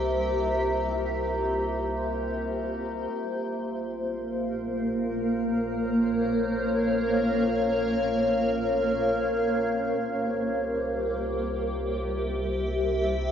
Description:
ambient; free time; Bb dorian; A4 = 436 Hz
granular cloud pad; sustained chords; 0.0-13.3 s; Bb3 to F5; -26 LUFS; equal; built-in reverb, cassette tape
warm sub bass; bass; 0.0-13.3 s; Bb1 to C2; -37 LUFS; equal
analog drone; drone; 0.0-13.3 s; Bb3 to F4; -36 LUFS; right 1 dB; chorus, cassette tape
glass harmonica; texture; 0.0-3.1 s; Bb4 to Bb5; -34 LUFS; left 1 dB; cassette tape
wet spring reverb, RT60 1.8 s; home recording on cassette; -25 LUFS; side -8 dB against mid
0.0-3.1 A section; 3.1-13.3 B section
fade-in on sub bass 3.1-13.3; fade-out on synth drone 3.1-13.3
0.0 C; 3.1 Bbmadd9; 10.0 C

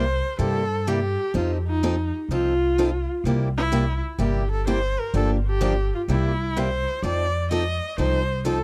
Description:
acoustic string swing (jazz manouche); 126 BPM; 4/4; swing 66% on 8ths; C mixolydian; A4 = 440 Hz
clear viola; melody; 0.0-8.6 s; Eb4 to Eb5; -28 LUFS; equal; tape echo
picked steel-string acoustic guitar; accompaniment; 0.0-8.6 s; C3 to A4; -27 LUFS; equal
upright bass; bass; 0.0-8.6 s; G1 to G2; -27 LUFS; equal
light reverb; dry, close 1970s-style studio recording; -24 LUFS; mono
0.0-8.6 A section
0.0 C7; 1.3 F7; 3.2 C7; 5.1 Gm7; 6.1 C7; 7.0 F7

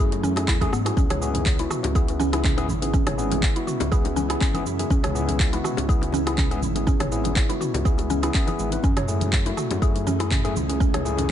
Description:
afro house; 122 BPM; 4/4; swing 54% on 16ths; C# minor; A4 = 440 Hz
ethereal airy pad; sustained chords; 0.0-11.3 s; C#3 to G#4; -31 LUFS; right 1 dB; ensemble chorus, built-in reverb, sidechain pumping
mallet-like synth pluck; arpeggios; 0.0-11.0 s; B3 to C#5; -29 LUFS; right 1 dB; chorus, sidechain pumping, tape echo
overdriven tine electric piano; stabs; 0.0-11.3 s; A3 to B4; -30 LUFS; left 5 dB; sidechain pumping, tape echo
dark detuned saw bass; bass; 0.0-11.3 s; G#1 to G#2; -28 LUFS; equal; sidechain pumping
deep house drum kit; drums; 0.1-11.3 s; cabasa, handclaps, hi-hat, rim click, toms; -29 LUFS; right 1 dB
bongos; percussion; 0.1-11.3 s; -34 LUFS; left 5 dB
congas; percussion; 0.2-11.3 s; -34 LUFS; right 2 dB
electronic kick drum; drums; 0.5-10.9 s; -22 LUFS; equal
digital ambience; echo-heavy mix, nothing above 10.9 kHz; -20 LUFS; side -10 dB against mid
0.0-11.3 A section
drum fill 0.5-1.0
0.0 F#m7; 1.0 C#m7; 8.8 F#m7

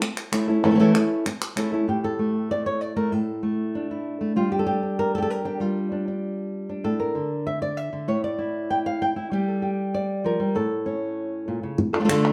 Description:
flamenco; 194 BPM; 4/4; straight; A phrygian dominant; A4 = 440 Hz
flamenco guitar; melody; 0.0-12.3 s; A2 to G5; -25 LUFS; equal
palmas hand claps; percussion; 0.0-1.7, 11.9-12.3 s; -31 LUFS; equal
wet studio reverb, RT60 0.7 s; heard from further back in the room; -25 LUFS; mono
0.0-1.9 A section; 1.9-11.8 B section
0.0 A; 1.9 Asus4; 4.4 Gm7; 6.8 Asus4; 9.3 Gm; 10.6 A; 11.8 Dm

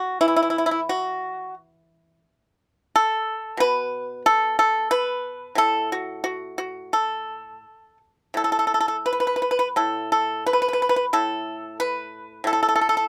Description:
chinese traditional, Chinese solo plucked strings; 88 BPM; 4/4; uneven beats, rubato; A4 = 440 Hz
pipa; solo; 0.0-13.1 s; A2 to B4; -23 LUFS; equal
little or no reverb; close, detailed microphones; -23 LUFS; mono
0.0-13.1 A section

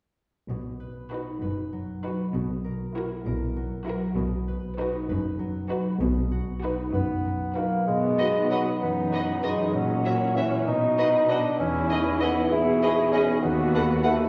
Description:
cinematic, playful, whimsical film cue; 65 BPM (dotted quarters); 6/8; straight; B major; A4 = 440 Hz
concert harp; arpeggios; 0.5-14.3 s; A#2 to C#5; -32 LUFS; equal
muted chamber cello section; bass; 0.5-14.2 s; D#2 to B2; -33 LUFS; equal
muted chamber double bass section; bass; 0.5-7.7 s; F#1 to B1; -35 LUFS; equal
muted chamber violin section; melody; 1.1-14.1 s; A#4 to F#5; -37 LUFS; equal
muted chamber violin section; second line; 1.1-14.1 s; F#4 to C#5; -37 LUFS; equal
muted chamber viola section; accompaniment; 1.1-14.3 s; B3 to G#4; -33 LUFS; equal
warm bassoon; accompaniment; 6.9-14.3 s; E3 to E4; -28 LUFS; equal
wet recital hall reverb, RT60 1.8 s; recorded in a church or concert hall; -26 LUFS; mono
0.5-7.9 A section; 7.9-14.3 B section
0.5 B; 2.3 F#7/B; 4.2 B; 9.7 F#7/A#; 10.7 B; 11.6 Emaj7; 13.4 B7/D#

